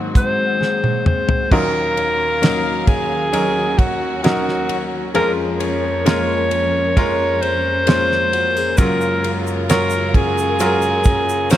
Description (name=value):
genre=pop ballad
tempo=66 BPM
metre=4/4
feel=straight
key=unclear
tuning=A4 = 440 Hz
part: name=bright grand piano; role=accompaniment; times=0.0-11.6 s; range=Eb2 to Db5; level=-22 LUFS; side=equal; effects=none
part: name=warm symphonic string section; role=sustained chords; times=0.0-11.6 s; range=Eb2 to F5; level=-25 LUFS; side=equal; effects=none
part: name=fingerpicked plugged-in steel-string acoustic guitar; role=arpeggios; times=0.0-11.6 s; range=Ab2 to Ab4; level=-26 LUFS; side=left 7 dB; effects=none
part: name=clear alto saxophone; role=melody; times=0.2-11.6 s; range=Gb4 to Db5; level=-19 LUFS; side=equal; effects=none
part: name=damped 70s drum kit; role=drums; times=0.2-11.6 s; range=crash cymbal, hi-hat, kick drum, ride cymbal, snare drum, toms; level=-18 LUFS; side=right 1 dB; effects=none
part: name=tube shaker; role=percussion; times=8.8-11.6 s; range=none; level=-34 LUFS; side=right 11 dB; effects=none
room=light reverb, small room reverb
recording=none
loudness=-15 LUFS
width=side -12 dB against mid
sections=0.0-1.5 A section; 1.5-11.6 B section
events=grand piano solo 0.0-1.5; drum fill 0.6-1.5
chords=0.0 Ab7; 1.5 Ebm7; 5.2 Bbm7/F; 8.8 Gbmaj7